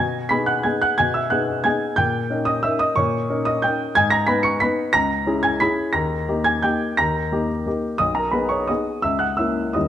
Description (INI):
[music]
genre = classical, piano waltz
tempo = 153-192 BPM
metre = 3/4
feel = rubato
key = G# minor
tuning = A4 = 440 Hz
[part]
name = warm baby grand piano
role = solo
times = 0.0-9.9 s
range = B1 to C#7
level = -18 LUFS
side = equal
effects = none
[sound]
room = moderate recital hall reverb, RT60 1.5 s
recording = close, detailed microphones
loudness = -18 LUFS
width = side -10 dB against mid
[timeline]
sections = 0.0-9.9 A section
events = none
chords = 0.0 G#m/B; 2.0 D#7/A#; 4.0 G#m; 4.9 C#m; 5.9 D#; 8.0 G#m/B; 9.0 A#dim/C#